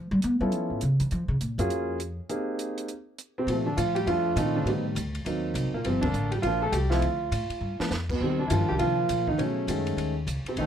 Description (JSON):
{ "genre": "jazz piano trio", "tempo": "203 BPM", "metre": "4/4", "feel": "swing 62% on 8ths", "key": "Bb major from 3.5 s", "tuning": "A4 = 435 Hz", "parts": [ { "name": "upright bass", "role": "bass", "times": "0.0-10.7 s", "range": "G1 to Cb4", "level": "-28 LUFS", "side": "equal", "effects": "none" }, { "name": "compact cocktail drum kit", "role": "drums", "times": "0.2-10.7 s", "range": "crash cymbal, hi-hat, kick drum, ride cymbal, snare drum", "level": "-38 LUFS", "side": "right 1 dB", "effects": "none" }, { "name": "warm grand piano", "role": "melody", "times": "0.4-10.7 s", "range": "Bb2 to A4", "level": "-27 LUFS", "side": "right 1 dB", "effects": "none" } ], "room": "light reverb", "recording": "dark, warm production", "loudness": "-25 LUFS", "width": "side -9 dB against mid", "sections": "0.0-3.5 A section; 3.5-10.7 B section", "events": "upright bass solo 0.0-3.5; band accent 6.0; drum fill 7.6", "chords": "0.0 Db7alt; 1.1 Gbmaj9; 2.3 Bb13sus4; 2.9 N.C.; 3.5 Bbmaj9; 4.7 Am7b5; 5.3 Cm7b5; 5.8 Gm7; 7.0 Dm; 7.6 G7; 8.2 Cm7; 9.4 B13", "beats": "0.23 0.52 0.82 | 1.11 1.41 1.70 2.00 | 2.29 2.59 2.89 3.18 | 3.48 3.77 4.07 4.37 | 4.66 4.96 5.25 5.55 | 5.84 6.14 6.44 6.73 | 7.03 7.32 7.62 7.91 | 8.21 8.50 8.80 9.09 | 9.39 9.68 9.98 10.27 | 10.57" }